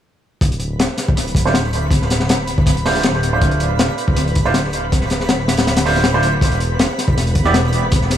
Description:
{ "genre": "drum and bass, jungle", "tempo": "160 BPM", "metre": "4/4", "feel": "swing 53% on 16ths", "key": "D dorian", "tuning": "A4 = 441 Hz", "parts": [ { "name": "dark detuned saw bass", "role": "bass", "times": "0.4-8.2 s", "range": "D1 to E1", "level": "-19 LUFS", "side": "equal", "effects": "none" }, { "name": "crunchy breakbeat drum kit", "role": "drums", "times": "0.4-8.2 s", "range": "hi-hat, kick drum, snare drum", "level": "-17 LUFS", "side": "left 1 dB", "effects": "dub echo" }, { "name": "twinkling granular texture", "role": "texture", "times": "0.6-8.2 s", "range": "B4 to B5", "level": "-27 LUFS", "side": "right 1 dB", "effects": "built-in reverb" }, { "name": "bright baby grand piano", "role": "stabs", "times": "1.5-7.5 s", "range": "A3 to D5", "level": "-21 LUFS", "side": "right 4 dB", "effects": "vintage 12-bit sampler grit, low-pass filter, dub echo" } ], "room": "light reverb, small room reverb", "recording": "echo-heavy mix, small room ambience", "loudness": "-14 LUFS", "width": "side -10 dB against mid", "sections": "0.4-8.2 A section", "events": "filter sweep on grand piano 0.4-8.2", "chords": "0.4 Dm7; 6.4 E5", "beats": "| 0.42 0.79 1.17 1.54 | 1.92 2.29 2.67 3.04 | 3.42 3.79 4.17 4.54 | 4.92 5.29 5.67 6.04 | 6.42 6.79 7.17 7.54 | 7.92" }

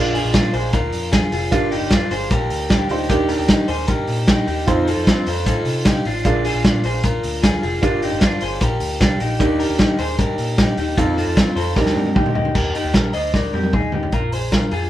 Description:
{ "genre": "jangly indie pop", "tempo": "152 BPM", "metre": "4/4", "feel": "straight", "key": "Eb major", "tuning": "A4 = 438 Hz", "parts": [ { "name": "dark upright piano", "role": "accompaniment", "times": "0.0-12.6 s", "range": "C4 to C6", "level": "-24 LUFS", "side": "right 3 dB", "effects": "none" }, { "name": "electric guitar through a small old amp", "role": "arpeggios", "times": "0.0-14.9 s", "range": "C4 to Eb5", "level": "-22 LUFS", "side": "left 2 dB", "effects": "none" }, { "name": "vintage muted picked electric bass", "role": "bass", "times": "0.0-14.9 s", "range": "F1 to F3", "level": "-25 LUFS", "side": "equal", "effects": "none" }, { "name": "vintage drum kit", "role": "drums", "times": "0.1-14.8 s", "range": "crash cymbal, hi-hat, kick drum, ride cymbal, snare drum, toms", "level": "-18 LUFS", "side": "equal", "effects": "none" } ], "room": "moderate studio ambience, RT60 0.5 s", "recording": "band playing live in one room", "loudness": "-16 LUFS", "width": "side -13 dB against mid", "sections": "0.0-12.5 A section; 12.5-14.1 B section", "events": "upright piano fill 2.5-3.1, 12.0-12.5; drum fill 11.8-12.5, 13.3-14.1", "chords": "0.0 Bb7; 1.5 Gm7; 3.1 Ebmaj7; 4.7 F7; 6.3 Bb7; 7.8 Gm7; 9.4 Ebmaj7; 11.0 F7; 11.8 Ebmaj7; 14.1 Bb5", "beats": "0.34 0.74 1.13 | 1.52 1.92 2.31 2.71 | 3.10 3.50 3.89 4.28 | 4.68 5.07 5.47 5.86 | 6.25 6.65 7.04 7.43 | 7.83 8.22 8.61 9.01 | 9.40 9.79 10.19 10.58 | 10.97 11.37 11.76 12.15 | 12.55 12.94 13.34 13.73 | 14.13 14.52" }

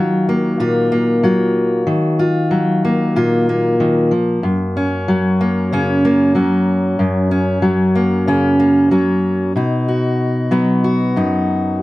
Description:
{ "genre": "folk", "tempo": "94 BPM", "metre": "4/4", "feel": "straight", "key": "F# major", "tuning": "A4 = 445 Hz", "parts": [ { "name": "fingerpicked steel-string acoustic guitar", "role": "solo", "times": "0.0-11.8 s", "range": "F#2 to F#4", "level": "-13 LUFS", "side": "equal", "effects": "none" } ], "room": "light reverb", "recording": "dark, warm production", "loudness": "-13 LUFS", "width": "side -18 dB against mid", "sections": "0.0-9.6 A section; 9.6-11.8 B section", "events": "none", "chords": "0.0 D#madd9; 4.4 F#; 9.6 B", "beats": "0.59 1.23 | 1.87 2.51 3.15 3.79 | 4.43 5.07 5.71 6.35 | 6.99 7.63 8.27 8.91 | 9.55 10.19 10.83 11.47" }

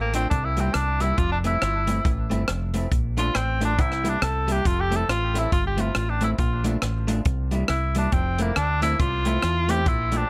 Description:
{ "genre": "ska", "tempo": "138 BPM", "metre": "4/4", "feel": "swing 60% on 8ths", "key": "F major", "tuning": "A4 = 440 Hz", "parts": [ { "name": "clear tenor saxophone", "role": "melody", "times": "0.0-10.3 s", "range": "Bb3 to A4", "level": "-28 LUFS", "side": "equal", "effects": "analog delay" }, { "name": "fingered electric bass", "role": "bass", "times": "0.0-10.2 s", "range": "F1 to E2", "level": "-28 LUFS", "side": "equal", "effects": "none" }, { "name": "electric guitar at the edge of break-up", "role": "accompaniment", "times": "0.1-10.2 s", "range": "G3 to F4", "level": "-32 LUFS", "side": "equal", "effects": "analog delay" }, { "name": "compact cocktail drum kit", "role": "drums", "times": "0.1-10.2 s", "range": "hi-hat, kick drum, rim click", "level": "-28 LUFS", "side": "equal", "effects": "none" } ], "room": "light reverb", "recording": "none", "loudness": "-23 LUFS", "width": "mono", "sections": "0.0-10.3 A section", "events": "tenor saxophone solo 0.0-10.3", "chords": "0.3 C7; 1.2 Fmaj7; 2.9 Bbmaj7; 3.8 C7; 4.7 Fmaj7; 6.4 Bbmaj7; 7.3 C7; 8.1 Fmaj7", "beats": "0.31 0.74 | 1.18 1.61 2.05 2.48 | 2.92 3.35 3.79 4.22 | 4.65 5.09 5.52 5.96 | 6.39 6.83 7.26 7.69 | 8.13 8.56 8.99 9.43 | 9.86 10.30" }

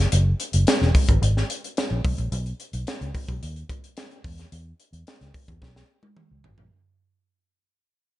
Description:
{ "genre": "polished 1980s jazz-funk pop", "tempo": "109 BPM", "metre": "4/4", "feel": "straight", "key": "B major", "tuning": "A4 = 440 Hz", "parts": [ { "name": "vintage muted fingered electric bass", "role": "bass", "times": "0.0-6.7 s", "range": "E1 to E2", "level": "-22 LUFS", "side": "equal", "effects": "none" }, { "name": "crisp fusion drum kit", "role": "drums", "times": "0.0-6.7 s", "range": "hi-hat, kick drum, snare drum, toms", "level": "-23 LUFS", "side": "equal", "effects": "gated reverb" } ], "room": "little or no reverb", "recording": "nothing above 10.8 kHz", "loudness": "-21 LUFS", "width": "side -16 dB against mid", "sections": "0.0-6.7 A section", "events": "fade-out 0.0-6.7; drum fill 5.6-6.7", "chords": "none", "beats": "| 0.12 0.67 1.22 1.77 | 2.32 2.87 3.42 3.97 | 4.52 5.07 5.62 6.16" }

